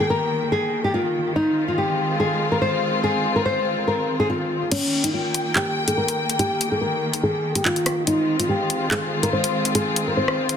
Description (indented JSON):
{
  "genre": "hip hop, drill",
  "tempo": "143 BPM",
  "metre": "4/4",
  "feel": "half-time",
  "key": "unclear",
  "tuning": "A4 = 441 Hz",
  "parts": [
    { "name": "nylon-string guitar", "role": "melody", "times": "0.0-10.6 s", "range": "Db4 to C5", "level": "-22 LUFS", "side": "left 1 dB", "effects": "low-pass filter, ping-pong delay" },
    { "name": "warm studio string section", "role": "sustained chords", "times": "0.0-10.6 s", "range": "Eb3 to G5", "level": "-24 LUFS", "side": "equal", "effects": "none" },
    { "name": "drill drum kit", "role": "drums", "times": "4.7-10.6 s", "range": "crash cymbal, handclaps, hi-hat, rim click", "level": "-24 LUFS", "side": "left 1 dB", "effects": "overdrive" }
  ],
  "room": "light reverb, studio reverb",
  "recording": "dense, heavily limited modern master",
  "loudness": "-19 LUFS",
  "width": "side -8 dB against mid",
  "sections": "0.0-4.7 A section; 4.7-10.6 B section",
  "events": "kick muted 4.7-10.6; filter sweep on nylon-string guitar 4.7-10.6",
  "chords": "0.0 Eb; 1.4 Fm7; 4.7 Eb; 8.1 Fm7",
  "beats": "0.10 0.52 0.94 | 1.36 1.78 2.20 2.62 | 3.04 3.46 3.88 4.30 | 4.71 5.13 5.55 5.97 | 6.39 6.81 7.23 7.65 | 8.07 8.49 8.91 9.33 | 9.75 10.17"
}